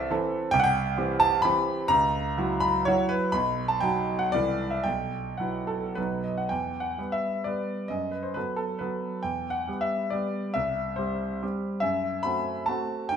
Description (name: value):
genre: classical, romantic triple-time dance for piano with dotted rhythms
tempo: 101-155 BPM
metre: 3/4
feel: rubato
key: E minor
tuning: A4 = 443 Hz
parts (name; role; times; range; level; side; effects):
- clear concert grand piano; solo; 0.0-13.2 s; B1 to B5; -25 LUFS; right 1 dB; none
room: wet large studio reverb, RT60 1.4 s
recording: minimal, uncompressed stereo recording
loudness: -25 LUFS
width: side -8 dB against mid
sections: 0.0-6.5 A section; 6.5-13.2 B section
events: none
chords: 0.0 Am/C; 0.5 C; 1.9 F#7/C#; 3.4 B; 4.3 Am/C; 4.8 Bsus4; 6.0 B; 6.5 Em; 7.9 B5/F#; 9.2 Em; 10.6 C; 11.8 F#m7b5